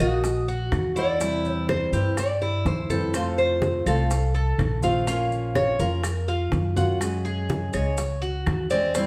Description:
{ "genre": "latin, Cuban son and guajira", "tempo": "124 BPM", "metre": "4/4", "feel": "straight", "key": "unclear", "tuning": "A4 = 441 Hz", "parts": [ { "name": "nylon-string guitar", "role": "melody", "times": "0.0-4.8, 8.7-9.1 s", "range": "Gb4 to D5", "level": "-30 LUFS", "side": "equal", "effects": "plate reverb" }, { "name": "fingerpicked steel-string acoustic guitar", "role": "accompaniment", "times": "0.0-9.1 s", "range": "C3 to Ab4", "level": "-32 LUFS", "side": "equal", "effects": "none" }, { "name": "Cuban tres", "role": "arpeggios", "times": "0.0-9.1 s", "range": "C4 to F5", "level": "-30 LUFS", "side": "equal", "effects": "none" }, { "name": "upright bass", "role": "bass", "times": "0.0-9.1 s", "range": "Bb1 to G2", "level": "-29 LUFS", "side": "equal", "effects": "none" }, { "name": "bongos", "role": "percussion", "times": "0.0-9.1 s", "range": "none", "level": "-38 LUFS", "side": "equal", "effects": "none" }, { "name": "claves", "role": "percussion", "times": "0.0-8.7 s", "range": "none", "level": "-41 LUFS", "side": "equal", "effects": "none" }, { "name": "congas", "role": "percussion", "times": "0.0-9.1 s", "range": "none", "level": "-34 LUFS", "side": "equal", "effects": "none" }, { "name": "maracas", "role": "percussion", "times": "0.0-9.1 s", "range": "none", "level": "-42 LUFS", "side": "equal", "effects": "none" } ], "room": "wet large studio reverb, RT60 1.1 s", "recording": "heard from further back in the room", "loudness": "-24 LUFS", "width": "mono", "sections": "0.0-9.1 A section", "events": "none", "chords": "0.0 Ebm; 1.2 C/E; 3.1 F; 5.1 Bbm; 7.0 Gbsus2" }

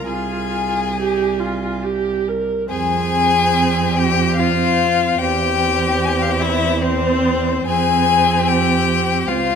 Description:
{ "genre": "classical, slow romantic movement for string quartet", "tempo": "66-78 BPM", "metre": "3/4", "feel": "rubato", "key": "F minor", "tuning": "A4 = 437 Hz", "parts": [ { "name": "rich violin", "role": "melody", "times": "0.0-9.6 s", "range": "C5 to Ab5", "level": "-20 LUFS", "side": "left 11 dB", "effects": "none" }, { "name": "clear violin", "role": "second line", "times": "0.0-9.6 s", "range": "C4 to Ab4", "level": "-22 LUFS", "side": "left 2 dB", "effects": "none" }, { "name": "rich viola", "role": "accompaniment", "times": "0.0-9.6 s", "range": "C4 to Bb4", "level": "-22 LUFS", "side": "right 4 dB", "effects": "none" }, { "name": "rich cello", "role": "bass", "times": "0.0-9.6 s", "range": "C2 to F2", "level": "-21 LUFS", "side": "right 5 dB", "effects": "none" } ], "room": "moderate recital hall reverb, RT60 1.7 s", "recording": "none", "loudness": "-15 LUFS", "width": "side -6 dB against mid", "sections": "0.0-2.7 A section; 2.7-9.6 B section", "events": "none", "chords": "0.1 Fm/C; 1.8 C5; 2.7 Fm; 5.2 C/E; 7.7 Fm" }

